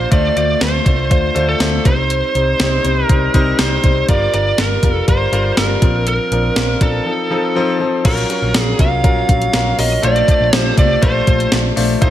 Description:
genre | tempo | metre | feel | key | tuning
1980s-style pop | 121 BPM | 4/4 | straight | unclear | A4 = 445 Hz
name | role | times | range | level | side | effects
biting lead guitar | melody | 0.0-12.1 s | A4 to F5 | -18 LUFS | right 2 dB | overdrive, tape echo
clear concert grand piano | accompaniment | 0.0-12.1 s | F3 to C5 | -19 LUFS | left 4 dB | none
hollow-body short-scale picked electric bass | bass | 0.0-12.1 s | F1 to D2 | -19 LUFS | equal | none
clean 12-bit digital drum machine | drums | 0.1-12.1 s | crash cymbal, hi-hat, kick drum, snare drum | -16 LUFS | equal | gated reverb
room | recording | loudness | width
light reverb, digital ambience | none | -12 LUFS | side -12 dB against mid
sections
0.0-8.1 A section; 8.1-12.1 B section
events
none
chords
0.1 Dm7; 1.9 Cm; 4.1 Gm7; 5.8 Bbadd9; 7.1 F7; 8.1 Gbmaj7/Bb; 10.0 Dm7/Bb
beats
| 0.12 0.61 1.11 1.60 | 2.10 2.60 3.09 3.59 | 4.08 4.58 5.08 5.57 | 6.07 6.56 7.06 7.56 | 8.05 8.55 9.04 9.54 | 10.04 10.53 11.03 11.52 | 12.02

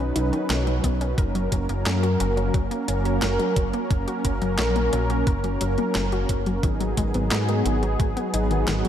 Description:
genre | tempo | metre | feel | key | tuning
synthwave | 88 BPM | 4/4 | straight | F# major | A4 = 442 Hz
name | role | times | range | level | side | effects
warm analog pad | sustained chords | 0.0-8.9 s | F#3 to B4 | -25 LUFS | equal | chorus, sidechain pumping
wide unison pluck | arpeggios | 0.0-8.9 s | D#3 to A#4 | -30 LUFS | left 3 dB | vintage 12-bit sampler grit, tape echo
deep dub picked electric bass | bass | 0.0-8.8 s | F#1 to G#2 | -25 LUFS | equal | sidechain pumping
clean 12-bit digital drum machine | drums | 0.2-8.9 s | handclaps, hi-hat, snare drum | -30 LUFS | equal | overdrive
electronic kick drum | drums | 0.8-8.1 s | none | -24 LUFS | equal | overdrive
room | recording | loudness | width
moderate lush hall reverb, RT60 2.6 s | dreamy mix soaked in reverb | -21 LUFS | side -10 dB against mid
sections
0.0-8.9 A section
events
none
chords
0.0 Badd9; 1.2 F#; 6.6 G#m7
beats
0.50 | 1.18 1.86 2.54 3.22 | 3.90 4.59 5.27 5.95 | 6.63 7.32 8.00 8.68

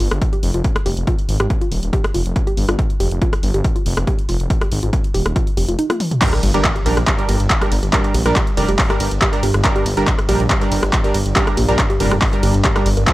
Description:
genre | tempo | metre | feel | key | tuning
driving peak-time techno | 140 BPM | 4/4 | straight | G minor | A4 = 440 Hz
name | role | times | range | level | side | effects
woody wave-folded pluck | riff | 0.0-13.1 s | Eb4 to Bb4 | -26 LUFS | right 1 dB | chorus, tube saturation, sidechain pumping, tape echo
detuned saw bass | bass | 0.0-13.0 s | Eb1 to Bb1 | -19 LUFS | equal | sidechain pumping
punchy analog drum machine | drums | 0.0-13.1 s | crash cymbal, handclaps, hi-hat, ride cymbal, rim click, toms | -21 LUFS | equal | overdrive, sidechain pumping on hats, sidechain pumping on toms, sidechain pumping on cymbals
electronic kick drum | drums | 0.2-13.1 s | none | -19 LUFS | equal | none
supersaw stab | stabs | 6.2-13.1 s | F3 to Bb4 | -21 LUFS | right 2 dB | sidechain pumping, tape echo
analog drone | drone | 7.8-13.1 s | G2 | -26 LUFS | left 1 dB | none
impact | sound effects | 6.2-7.9 s | none | -27 LUFS | equal | none
room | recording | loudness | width
little or no reverb | dry, gritty hardware recording | -15 LUFS | side -17 dB against mid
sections
0.0-6.2 A section; 6.2-13.1 B section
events
drum fill 5.9-6.2; drop 6.2-13.1; impact 6.2-7.9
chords
0.0 N.C.; 6.2 Gm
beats
0.22 0.64 | 1.07 1.50 1.93 2.36 | 2.79 3.22 3.64 4.07 | 4.50 4.93 5.36 5.79 | 6.22 6.64 7.07 7.50 | 7.93 8.36 8.79 9.22 | 9.64 10.07 10.50 10.93 | 11.36 11.79 12.22 12.64 | 13.07

